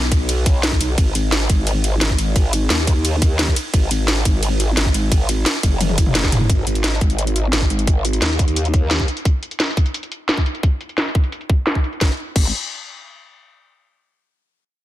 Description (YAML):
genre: dark technical drum and bass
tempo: 174 BPM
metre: 4/4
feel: straight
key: G# minor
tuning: A4 = 440 Hz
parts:
  - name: growl bass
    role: bass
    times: 0.0-9.1, 12.0-12.5 s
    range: F#1 to D#2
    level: -19 LUFS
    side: equal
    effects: chorus, tube saturation, sidechain pumping
  - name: drum and bass drum kit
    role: drums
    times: 0.1-12.4 s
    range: crash cymbal, hi-hat, ride cymbal, snare drum, toms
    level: -21 LUFS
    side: equal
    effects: low-pass filter on hats, low-pass filter on cymbals, low-pass filter on snare, low-pass filter on toms, low-pass filter on room
  - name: electronic kick drum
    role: drums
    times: 0.1-12.4 s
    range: none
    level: -16 LUFS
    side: equal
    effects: none
room: little or no reverb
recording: dense, heavily limited modern master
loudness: -16 LUFS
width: side -14 dB against mid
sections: 0.0-6.5 A section; 6.5-12.0 B section; 12.0-13.4 C section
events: drop 0.0-6.5; drum fill 5.8-6.5; filter sweep on drum 6.5-12.0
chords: none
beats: 0.29 0.63 | 0.98 1.32 1.67 2.01 | 2.36 2.70 3.05 3.39 | 3.74 4.08 4.43 4.77 | 5.12 5.46 5.81 6.15 | 6.50 6.84 7.18 7.53 | 7.88 8.22 8.56 8.91 | 9.25 9.60 9.94 10.29 | 10.63 10.98 11.32 11.67 | 12.01 12.36